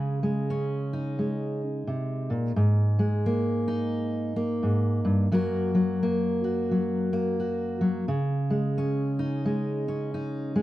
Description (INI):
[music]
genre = folk, solo fingerstyle acoustic guitar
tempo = 87 BPM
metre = 4/4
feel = swing 61% on 8ths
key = unclear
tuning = A4 = 440 Hz
[part]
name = fingerpicked steel-string acoustic guitar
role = solo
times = 0.0-10.6 s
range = Gb2 to Bb4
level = -24 LUFS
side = equal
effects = none
[sound]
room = light reverb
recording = dark, warm production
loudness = -24 LUFS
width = side -15 dB against mid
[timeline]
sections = 0.0-10.6 A section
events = none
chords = 0.0 Dbsus2; 2.6 Absus2; 5.3 Gb; 8.1 Dbsus2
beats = 0.49 1.18 1.87 | 2.56 3.25 3.94 4.62 | 5.31 6.00 6.69 7.38 | 8.06 8.75 9.44 10.13